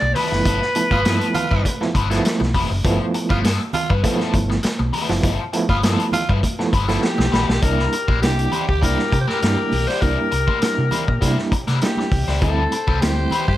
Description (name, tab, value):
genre	funk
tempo	100 BPM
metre	4/4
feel	straight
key	unclear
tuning	A4 = 440 Hz
part	breathy alto saxophone	melody	0.0-1.9, 7.0-13.5 s	G4 to D5	-23 LUFS	left 2 dB	plate reverb
part	crunchy overdriven guitar	accompaniment	0.0-13.5 s	F3 to C5	-26 LUFS	left 5 dB	wah, plate reverb
part	fingered electric bass	bass	0.0-13.6 s	F1 to C3	-22 LUFS	equal	none
part	congas	percussion	0.0-13.5 s	none	-31 LUFS	right 4 dB	none
part	vintage drum kit	drums	0.2-13.6 s	hi-hat, kick drum, snare drum	-22 LUFS	equal	none
part	overdriven reed electric piano	stabs	0.3-13.3 s	F3 to E4	-23 LUFS	right 3 dB	fast tremolo, plate reverb
part	growling tenor saxophone	second line	0.9-13.6 s	F4 to C5	-28 LUFS	right 4 dB	plate reverb
room	light reverb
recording	none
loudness	-17 LUFS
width	side -14 dB against mid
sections	0.0-7.6 A section; 7.6-13.6 B section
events	drum fill 7.0-7.6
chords	0.0 G13; 7.6 C9; 12.4 D9sus4